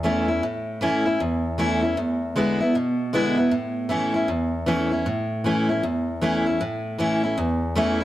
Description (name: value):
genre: rock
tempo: 155 BPM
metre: 4/4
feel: swing 63% on 8ths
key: A major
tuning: A4 = 440 Hz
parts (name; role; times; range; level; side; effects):
- picked steel-string acoustic guitar; solo; 0.0-8.0 s; E2 to E4; -21 LUFS; equal; none
room: light reverb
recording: none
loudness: -21 LUFS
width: side -14 dB against mid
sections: 0.0-8.0 A section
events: none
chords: 0.0 A; 2.0 E7; 3.5 A